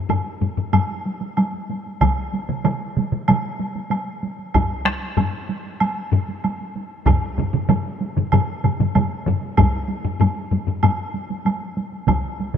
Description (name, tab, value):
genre	japanese traditional, taiko drum ensemble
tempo	95 BPM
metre	4/4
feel	straight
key	none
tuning	none
part	taiko ensemble	percussion	0.1-12.6 s	none	-25 LUFS	right 2 dB	none
part	taiko ensemble	percussion	0.1-11.0 s	none	-21 LUFS	left 3 dB	none
part	woodblock	percussion	0.1-12.2 s	none	-27 LUFS	right 3 dB	none
part	taiko ensemble	percussion	2.0-12.6 s	none	-22 LUFS	right 4 dB	none
part	taiko ensemble	percussion	2.0-12.2 s	none	-22 LUFS	equal	none
room	moderate huge ambient reverb, RT60 4.4 s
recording	minimal, uncompressed stereo recording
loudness	-19 LUFS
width	side -8 dB against mid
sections	0.0-12.6 A section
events	none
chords	none